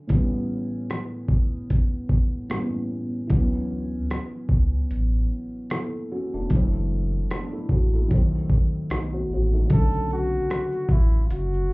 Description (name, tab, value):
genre	lo-fi hip hop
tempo	75 BPM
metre	4/4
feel	swing 58% on 16ths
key	B minor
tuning	A4 = 440 Hz
part	felt-muted upright piano	accompaniment	0.0-11.7 s	A2 to A4	-28 LUFS	equal	cassette tape, low-pass filter
part	dusty soul sampler-style drum kit	drums	0.1-11.7 s	hi-hat, kick drum, rim click, shaker	-22 LUFS	equal	overdrive
part	saturated sub bass	bass	3.3-11.6 s	E1 to D2	-23 LUFS	equal	none
part	breathy flugelhorn	melody	9.7-11.7 s	E4 to A4	-27 LUFS	left 1 dB	none
room	light reverb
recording	heard muffled through a wall, club reverb, EQ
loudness	-21 LUFS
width	side -24 dB against mid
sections	0.0-9.7 A section; 9.7-11.7 B section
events	filter sweep on felt piano 0.0-9.7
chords	0.1 A9; 3.3 Dmaj13; 6.5 F#m7b5; 8.1 B7b9; 9.7 Bm9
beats	| 0.10 0.90 1.70 2.50 | 3.30 4.10 4.90 5.70 | 6.50 7.30 8.10 8.90 | 9.70 10.50 11.30